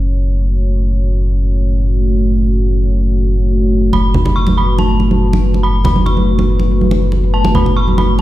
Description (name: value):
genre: deep dubstep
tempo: 141 BPM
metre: 4/4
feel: half-time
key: F# minor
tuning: A4 = 439 Hz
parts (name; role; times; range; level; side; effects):
- dark analog pad; sustained chords; 0.0-8.2 s; A3 to C#5; -18 LUFS; equal; chorus
- soft dub sub bass; bass; 0.0-8.2 s; F#1; -14 LUFS; equal; none
- dark detuned synth bell; melody; 3.9-8.2 s; A5 to C#6; -20 LUFS; equal; chorus, dub echo
- congas; percussion; 3.9-8.2 s; none; -17 LUFS; right 3 dB; none
room: light reverb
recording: played on a big sound system in a bare room, stone room reverb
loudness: -11 LUFS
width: side -15 dB against mid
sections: 0.0-8.2 A section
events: filter sweep on analog synth pad 0.0-8.2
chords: 0.0 F#m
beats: 0.11 | 0.53 0.96 1.38 1.81 | 2.23 2.66 3.08 3.51 | 3.94 4.36 4.79 5.21 | 5.64 6.06 6.49 6.92 | 7.34 7.77 8.19